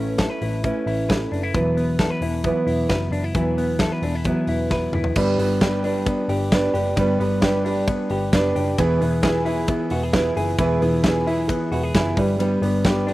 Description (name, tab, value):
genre	jangly indie pop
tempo	133 BPM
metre	4/4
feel	straight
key	unclear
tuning	A4 = 440 Hz
part	fingerpicked steel-string acoustic guitar	accompaniment	0.0-13.1 s	E3 to B4	-26 LUFS	right 3 dB	none
part	semi-hollow electric guitar	arpeggios	0.0-13.1 s	E3 to B4	-24 LUFS	left 3 dB	slapback echo
part	vintage muted picked electric bass	bass	0.0-13.1 s	E1 to A1	-27 LUFS	equal	none
part	big rock drum kit	drums	0.2-13.1 s	crash cymbal, hi-hat, kick drum, ride cymbal, snare drum, toms	-24 LUFS	equal	none
part	warm upright piano	accompaniment	5.2-13.1 s	D4 to B4	-24 LUFS	right 3 dB	slapback echo
room	little or no reverb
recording	recorded outdoors, with no room sound, vinyl crackle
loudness	-18 LUFS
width	side -17 dB against mid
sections	0.0-5.2 A section; 5.2-13.1 B section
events	drum fill 4.7-5.2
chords	0.0 Aadd9; 1.5 Esus2; 5.2 G; 8.8 E; 12.2 G